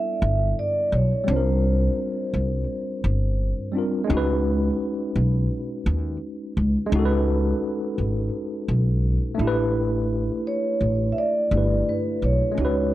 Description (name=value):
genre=lo-fi hip hop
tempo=85 BPM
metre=4/4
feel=swing 61% on 16ths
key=unclear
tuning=A4 = 442 Hz
part: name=vibraphone with soft mallets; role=melody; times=0.0-3.7, 10.5-12.9 s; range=B4 to E5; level=-26 LUFS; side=right 1 dB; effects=low-pass filter, tape echo
part: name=tine electric piano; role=accompaniment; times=0.0-12.9 s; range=G3 to D5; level=-26 LUFS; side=equal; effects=overdrive, fast stereo tremolo, cassette tape, low-pass filter
part: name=upright bass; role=bass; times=0.2-12.9 s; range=G1 to D#2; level=-22 LUFS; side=equal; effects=none
room=little or no reverb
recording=dark, warm production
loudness=-21 LUFS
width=side -14 dB against mid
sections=0.0-12.9 A section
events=none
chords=0.0 A9sus4; 1.3 C9sus4; 4.1 C#9sus4; 9.4 A9sus4